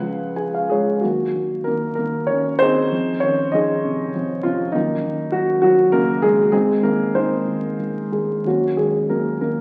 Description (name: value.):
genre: classical, lyrical solo piano.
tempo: 86-102 BPM.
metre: 3/4.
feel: rubato.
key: Eb dorian.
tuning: A4 = 440 Hz.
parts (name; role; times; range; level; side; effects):
dark baby grand piano; solo; 0.0-9.6 s; C#2 to G#5; -20 LUFS; equal; none.
room: wet recital hall reverb, RT60 1.5 s.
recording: very old 78 rpm record, vinyl crackle.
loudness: -20 LUFS.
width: mono.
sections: 0.0-1.0 A section; 1.0-9.6 B section.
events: grand piano fill 0.0-1.0.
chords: 0.0 C#; 1.0 Ebm; 2.9 Fm7; 4.7 Ebm7/Gb; 6.5 Ab; 8.4 Ebm7.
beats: 0.36 | 1.03 1.67 2.29 | 2.92 3.54 4.14 | 4.74 5.33 5.93 | 6.53 7.15 7.79 | 8.45 9.10.